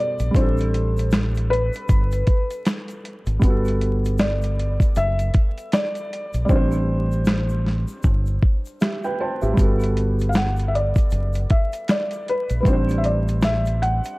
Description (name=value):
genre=lo-fi hip hop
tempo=78 BPM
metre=4/4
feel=swing 60% on 16ths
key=unclear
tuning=A4 = 444 Hz
part: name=felt-muted upright piano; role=melody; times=0.0-14.2 s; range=B4 to F#5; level=-26 LUFS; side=left 1 dB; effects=low-pass filter
part: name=felt-muted upright piano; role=accompaniment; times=0.0-14.2 s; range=B2 to A5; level=-27 LUFS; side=right 1 dB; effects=cassette tape, low-pass filter
part: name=deep dub fingered electric bass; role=bass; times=0.2-14.0 s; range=F#1 to Bb1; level=-22 LUFS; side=equal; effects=none
part: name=dusty soul sampler-style drum kit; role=drums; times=0.2-14.2 s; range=finger snaps, hi-hat, kick drum, snare drum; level=-20 LUFS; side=equal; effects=none
part: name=tube shaker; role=percussion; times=0.2-14.2 s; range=none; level=-51 LUFS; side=left 4 dB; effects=none
room=light reverb, studio ambience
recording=dark, warm production, vinyl crackle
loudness=-18 LUFS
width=side -22 dB against mid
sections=0.0-14.2 A section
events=hi-hats muted 6.5-9.6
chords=0.3 Am11; 3.4 Gmaj9; 6.5 Am7; 9.6 Gmaj9; 12.7 Am7